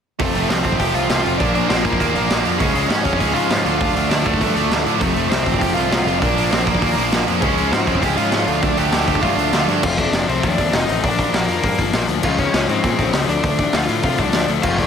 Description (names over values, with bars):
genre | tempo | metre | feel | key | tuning
punk rock | 199 BPM | 4/4 | straight | unclear | A4 = 442 Hz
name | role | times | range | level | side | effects
overdriven electric guitar | melody | 0.2-14.9 s | Ab3 to Ab5 | -23 LUFS | left 1 dB | digital delay
distorted electric guitar | riff | 0.2-9.8 s | F2 to D4 | -21 LUFS | right 17 dB | overdrive
sludgy distorted guitar | riff | 0.2-14.9 s | F2 to F4 | -22 LUFS | left 11 dB | overdrive
fuzz picked electric bass | bass | 0.2-14.9 s | F1 to C3 | -24 LUFS | right 1 dB | overdrive
raw garage drum kit | drums | 0.2-14.9 s | crash cymbal, hi-hat, kick drum, snare drum | -21 LUFS | right 1 dB | none
room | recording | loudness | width
light reverb | none | -15 LUFS | side -7 dB against mid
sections
0.2-9.8 A section; 9.8-14.9 B section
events
none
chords
0.2 F; 1.4 Bb; 2.6 Db; 3.7 Dm; 5.0 F; 6.2 Bb; 7.4 Db; 8.5 Dm; 9.8 F; 11.0 Bb; 12.2 Db; 13.3 Dm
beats
| 0.19 0.49 0.80 1.10 | 1.40 1.70 2.00 2.30 | 2.60 2.90 3.20 3.50 | 3.81 4.11 4.41 4.71 | 5.01 5.31 5.61 5.91 | 6.21 6.52 6.82 7.12 | 7.42 7.72 8.02 8.32 | 8.62 8.92 9.22 9.53 | 9.83 10.13 10.43 10.73 | 11.03 11.33 11.63 11.93 | 12.23 12.53 12.83 13.13 | 13.43 13.73 14.03 14.33 | 14.63